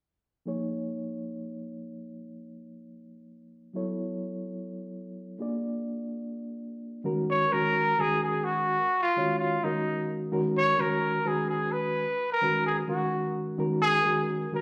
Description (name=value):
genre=jazz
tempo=256 BPM (eighths)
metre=7/8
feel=straight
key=Eb minor from 7.1 s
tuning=A4 = 440 Hz
part: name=mellow reed electric piano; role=accompaniment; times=0.5-14.6 s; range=Eb3 to D5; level=-33 LUFS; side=equal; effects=fast tremolo
part: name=breathy trumpet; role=melody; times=7.3-14.6 s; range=Eb4 to Db5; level=-28 LUFS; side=equal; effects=none
room=wet large studio reverb, RT60 1.3 s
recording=band playing live in one room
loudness=-28 LUFS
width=mono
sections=0.5-7.1 A section; 7.1-14.6 B section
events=none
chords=0.5 Eb9sus4; 3.8 Gbm7; 5.4 Bb7; 7.1 Ebm7; 10.3 Abm11; 13.6 Ebm7